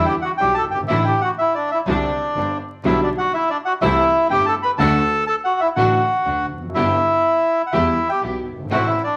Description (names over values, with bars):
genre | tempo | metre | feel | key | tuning
tango | 123 BPM | 4/4 | rubato | G major | A4 = 441 Hz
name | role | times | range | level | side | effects
bandoneon | melody | 0.0-9.2 s | D4 to B5 | -20 LUFS | equal | none
warm concert grand piano | accompaniment | 0.0-8.9 s | F#1 to G4 | -26 LUFS | equal | none
clear studio string section | stabs | 0.0-8.9 s | G3 to G4 | -30 LUFS | equal | none
clear double bass | bass | 0.0-8.9 s | F1 to E2 | -29 LUFS | equal | none
room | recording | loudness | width
wet large studio reverb, RT60 1.2 s | vinyl crackle | -19 LUFS | mono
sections
0.0-9.2 A section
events
none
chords
0.0 Em7; 0.9 Asus4; 1.9 Csus2; 2.8 G/B; 3.8 C6; 4.8 D; 6.7 G; 7.7 Em